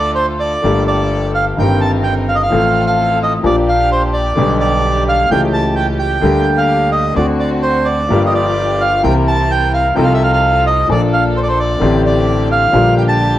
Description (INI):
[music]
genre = tango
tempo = 129 BPM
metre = 4/4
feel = rubato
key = G minor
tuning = A4 = 440 Hz
[part]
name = bandoneon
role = melody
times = 0.0-13.4 s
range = C5 to A5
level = -15 LUFS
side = right 1 dB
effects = slapback echo
[part]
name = clear concert grand piano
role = accompaniment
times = 0.0-13.4 s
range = G1 to A4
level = -16 LUFS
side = left 3 dB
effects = none
[part]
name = warm studio string section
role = stabs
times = 0.0-13.4 s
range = A3 to Bb4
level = -23 LUFS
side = right 1 dB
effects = none
[part]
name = upright bass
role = bass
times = 0.0-13.4 s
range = G1 to D2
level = -18 LUFS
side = right 1 dB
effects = none
[sound]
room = light reverb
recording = worn, warbling old tape, cassette tape, warbly pitch drift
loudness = -11 LUFS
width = side -13 dB against mid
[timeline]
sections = 0.6-13.4 A section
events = none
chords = 0.0 Dm; 0.6 Gmadd9; 1.6 Cm7/G; 2.5 F/A; 3.4 Bb6; 4.4 G/B; 5.3 A7/C#; 6.2 Gm/D; 7.2 D7; 8.1 Gm7; 9.0 C7; 10.0 F7/C; 10.9 Bbmaj7; 11.8 D7sus4/A; 12.7 Gm/Bb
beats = 0.16 | 0.64 1.11 1.58 2.05 | 2.51 2.98 3.44 3.91 | 4.37 4.84 5.30 5.76 | 6.23 6.70 7.16 7.63 | 8.10 8.57 9.04 9.50 | 9.97 10.43 10.90 11.36 | 11.82 12.28 12.74 13.21